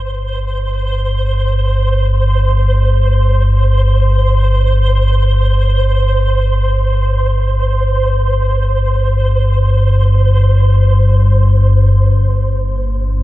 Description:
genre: dark ambient drone.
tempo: free time.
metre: none.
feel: none.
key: G minor.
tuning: A4 = 437 Hz.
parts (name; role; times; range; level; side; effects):
deep rumbling drone; drone; 0.0-13.2 s; G1 to G2; -11 LUFS; equal; built-in reverb, wide subtle chorus.
flickering grainy texture; texture; 0.0-11.9 s; C5; -20 LUFS; right 1 dB; built-in reverb.
deep dark ambient pad; sustained chords; 12.5-13.2 s; Bb3 to D5; -33 LUFS; left 1 dB; chorus, built-in reverb.
room: moderate cathedral reverb, RT60 6.5 s.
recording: cassette tape.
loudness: -11 LUFS.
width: side -16 dB against mid.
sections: 0.0-11.9 A section; 11.9-13.2 B section.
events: fade-in on synth texture 0.0-11.9.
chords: 0.0 Gsus4; 11.9 Gm.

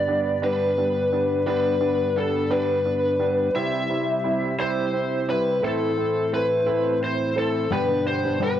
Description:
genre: pop.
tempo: 58 BPM (dotted quarters).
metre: 6/8.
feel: straight.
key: G major.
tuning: A4 = 440 Hz.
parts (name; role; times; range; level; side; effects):
lead guitar through a small cranked amp; melody; 0.0-8.6 s; A4 to E5; -23 LUFS; left 2 dB; overdrive, plate reverb, analog delay.
tonewheel organ; sustained chords; 0.0-8.6 s; G2 to E4; -28 LUFS; left 1 dB; slow rotary speaker, cassette tape.
clear concert grand piano; accompaniment; 0.1-8.6 s; G3 to G4; -27 LUFS; right 6 dB; cassette tape, plate reverb.
fingerpicked steel-string acoustic guitar; arpeggios; 7.7-8.6 s; G3 to B4; -27 LUFS; left 6 dB; cassette tape.
room: moderate small room reverb, RT60 0.5 s.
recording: home recording on cassette.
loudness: -20 LUFS.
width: side -10 dB against mid.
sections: 0.0-8.6 A section.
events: none.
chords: 0.0 G; 3.5 C; 5.6 Am; 7.7 G.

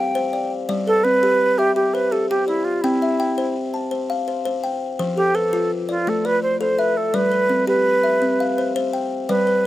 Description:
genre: southern african traditional.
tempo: 112 BPM (dotted quarters).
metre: 12/8.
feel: straight.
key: G mixolydian.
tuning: A4 = 440 Hz.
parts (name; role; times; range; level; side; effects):
wooden flute; melody; 0.0-9.7 s; E4 to G5; -19 LUFS; right 1 dB; none.
buzzing kalimba; arpeggios; 0.0-9.7 s; F3 to A5; -21 LUFS; left 2 dB; slapback echo.
room: little or no reverb.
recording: recorded outdoors, with no room sound.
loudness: -18 LUFS.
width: side -14 dB against mid.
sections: 0.7-9.7 A section.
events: none.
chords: 0.0 C5; 0.7 G; 2.8 C; 5.0 F; 6.1 A5; 7.1 G; 8.2 C.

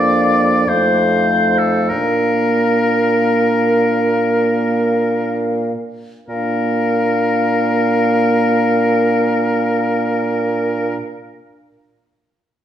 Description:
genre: classical, slow romantic movement for wind quintet.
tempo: 37-55 BPM.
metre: 3/4.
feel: rubato.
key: Bb major.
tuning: A4 = 441 Hz.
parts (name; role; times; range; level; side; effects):
mellow hollow concert flute; melody; 0.0-11.0 s; F5; -22 LUFS; left 9 dB; none.
clear oboe; second line; 0.0-11.0 s; A4 to D5; -19 LUFS; left 1 dB; none.
warm French horn; accompaniment; 0.0-11.0 s; A3 to Bb3; -21 LUFS; right 2 dB; none.
warm clarinet; accompaniment; 0.0-11.0 s; D4 to Eb4; -24 LUFS; right 6 dB; none.
warm bassoon; bass; 0.0-11.0 s; F2 to Bb2; -19 LUFS; right 1 dB; none.
room: wet recital hall reverb, RT60 1.5 s.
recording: heard from further back in the room.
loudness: -14 LUFS.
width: side -10 dB against mid.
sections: 0.0-6.3 A section; 6.3-11.1 B section.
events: slowing down 0.0-6.3.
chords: 0.0 Bb/F; 0.7 F7; 1.9 Bb.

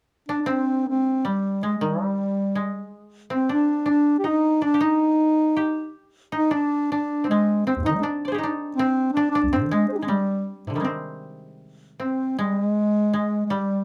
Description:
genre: japanese traditional, Japanese chamber music.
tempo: 80 BPM.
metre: 2/4.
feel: rubato.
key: C hirajoshi.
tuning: A4 = 439 Hz.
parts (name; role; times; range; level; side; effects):
mellow bass clarinet; melody; 0.3-13.8 s; C2 to C5; -24 LUFS; equal; none.
koto; second line; 0.3-13.8 s; C3 to D5; -30 LUFS; equal; none.
room: light reverb.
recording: close, detailed microphones.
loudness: -23 LUFS.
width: mono.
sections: 0.3-12.4 A section; 12.4-13.8 B section.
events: none.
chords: none.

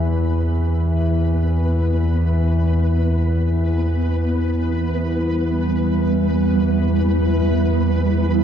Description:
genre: dark ambient drone.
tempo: free time.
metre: none.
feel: none.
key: E minor.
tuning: A4 = 440 Hz.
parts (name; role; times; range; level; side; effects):
analog drone; drone; 0.0-8.4 s; E2 to E3; -17 LUFS; equal; chorus.
flickering grainy texture; texture; 0.0-8.4 s; B3 to B4; -28 LUFS; equal; built-in reverb.
granular cloud pad; sustained chords; 5.4-8.4 s; G3 to B4; -21 LUFS; right 5 dB; built-in reverb.
room: wet huge ambient reverb, RT60 8.1 s.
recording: dark, warm production.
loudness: -17 LUFS.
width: side -8 dB against mid.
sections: 0.0-8.4 A section.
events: fade-in on synth texture 0.0-8.4.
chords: 0.0 Em.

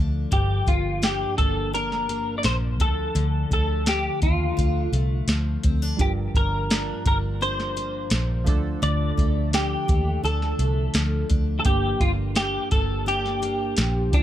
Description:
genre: indie pop, bedroom pop.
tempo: 85 BPM.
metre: 4/4.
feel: straight.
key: G minor.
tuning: A4 = 440 Hz.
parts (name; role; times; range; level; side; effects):
picked steel-string acoustic guitar; accompaniment; 0.0-14.2 s; G2 to D4; -31 LUFS; left 4 dB; wide subtle chorus, warbly pitch drift.
vintage muted fingered electric bass; bass; 0.0-14.2 s; G1 to Eb2; -25 LUFS; equal; none.
clean electric guitar; melody; 0.3-14.2 s; D4 to D5; -26 LUFS; left 1 dB; ensemble chorus, tape echo.
soft vintage rhythm box; drums; 0.3-14.2 s; hi-hat, kick drum, snare drum; -23 LUFS; equal; none.
warm analog keys; accompaniment; 6.0-14.2 s; F3 to Bb4; -33 LUFS; right 6 dB; chorus.
room: little or no reverb.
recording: none.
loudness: -21 LUFS.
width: side -12 dB against mid.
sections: 0.0-14.2 A section.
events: none.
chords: 0.3 Gm7; 2.8 Dm; 6.0 Gm7; 8.5 Dm; 11.7 Gm7.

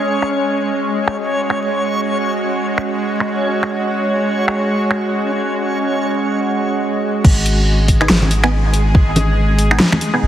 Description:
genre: deep dubstep.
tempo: 141 BPM.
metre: 4/4.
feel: swing 59% on 16ths, half-time.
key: unclear.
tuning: A4 = 441 Hz.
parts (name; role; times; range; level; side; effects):
bowed-like drone; sustained chords; 0.0-10.3 s; G#3 to G#4; -20 LUFS; right 1 dB; built-in reverb.
backwards swelling texture; texture; 0.0-5.5 s; C#4 to C#5; -20 LUFS; equal; built-in reverb.
dubstep drum kit; drums; 0.2-10.1 s; crash cymbal, finger snaps, hi-hat, snare drum; -18 LUFS; equal; low-pass filter on cymbals, low-pass filter on snare, low-pass filter on hats.
soft dub sub bass; bass; 7.2-10.3 s; F#1 to G#1; -15 LUFS; equal; none.
electronic kick drum; drums; 7.2-9.0 s; none; -11 LUFS; equal; none.
filtered dub chord stab; stabs; 8.0-10.3 s; B3 to G#4; -22 LUFS; right 1 dB; phaser, ensemble chorus, vintage 12-bit sampler grit, dub echo.
congas; percussion; 8.2-10.0 s; none; -20 LUFS; left 1 dB; dub echo.
room: moderate huge ambient reverb, RT60 7.1 s.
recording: heavily compressed radio sound, multiband compression, vinyl crackle.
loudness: -14 LUFS.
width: side -11 dB against mid.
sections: 0.0-7.2 A section; 7.2-10.3 B section.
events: drop 7.2-10.3.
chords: 0.0 G#7sus4; 7.2 G#m.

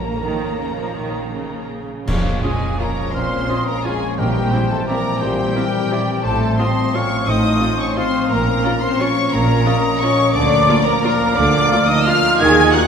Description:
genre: classical, orchestral ballroom waltz.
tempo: 154-190 BPM.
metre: 3/4.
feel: rubato.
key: Bb minor.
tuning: A4 = 441 Hz.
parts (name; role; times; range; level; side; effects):
warm studio violin section; melody; 0.0-12.9 s; Db5 to Ab6; -24 LUFS; left 2 dB; none.
rich studio violin section; second line; 0.0-12.9 s; F4 to Bb5; -25 LUFS; left 2 dB; none.
dark French horn section; sustained chords; 0.0-12.9 s; F3 to Bb4; -23 LUFS; left 3 dB; none.
dark studio double bass section; bass; 0.0-12.7 s; A1 to Eb2; -23 LUFS; right 2 dB; none.
rich studio cello section; bass; 0.0-12.7 s; A2 to Bb3; -24 LUFS; right 2 dB; none.
timpani; percussion; 0.0-4.7 s; Bb2; -30 LUFS; left 1 dB; none.
rich studio viola section; accompaniment; 0.2-12.8 s; Db3 to F4; -27 LUFS; right 1 dB; none.
mellow hollow concert flute; second line; 2.1-12.9 s; F5 to Ab6; -24 LUFS; equal; none.
warm cor anglais; second line; 2.1-12.9 s; Bb4 to Gb5; -25 LUFS; right 2 dB; none.
bright trombone section; sustained chords; 2.1-12.9 s; Eb3 to Db4; -26 LUFS; right 2 dB; none.
clash cymbals and concert bass drum; percussion; 2.1-2.8 s; none; -26 LUFS; equal; none.
room: wet cathedral reverb, RT60 4.7 s.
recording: recorded in a church or concert hall.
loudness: -15 LUFS.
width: side -7 dB against mid.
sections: 0.0-2.1 A section; 2.1-12.9 B section.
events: band accent 2.1-2.4.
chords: 0.0 Bbm; 4.2 C7/Bb; 6.2 F/A; 8.3 Bbm; 10.3 Bb/D.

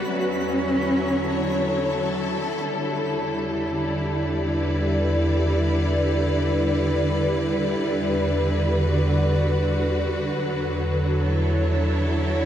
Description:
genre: ambient.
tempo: 70 BPM.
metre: 3/4.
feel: straight.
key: E dorian.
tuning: A4 = 440 Hz.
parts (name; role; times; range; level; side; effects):
rich cello; melody; 0.0-1.8, 12.1-12.5 s; D3 to C#4; -28 LUFS; right 1 dB; diffuse ambient delay.
rich studio string section; sustained chords; 0.0-12.5 s; D3 to D5; -22 LUFS; equal; low-pass filter.
warm sub bass; bass; 0.0-12.5 s; E2; -26 LUFS; equal; none.
twinkling granular texture; texture; 0.0-2.7 s; B5; -42 LUFS; right 1 dB; none.
room: wet huge ambient reverb, RT60 8.5 s.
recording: dreamy mix soaked in reverb.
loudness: -20 LUFS.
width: side -10 dB against mid.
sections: 0.0-2.7 A section; 2.7-12.5 A section.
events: fade-out on sub bass 0.0-2.7.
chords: 0.1 Dmaj9/E; 2.7 Em7; 7.8 Gmaj7/E; 10.4 Dmaj9/E.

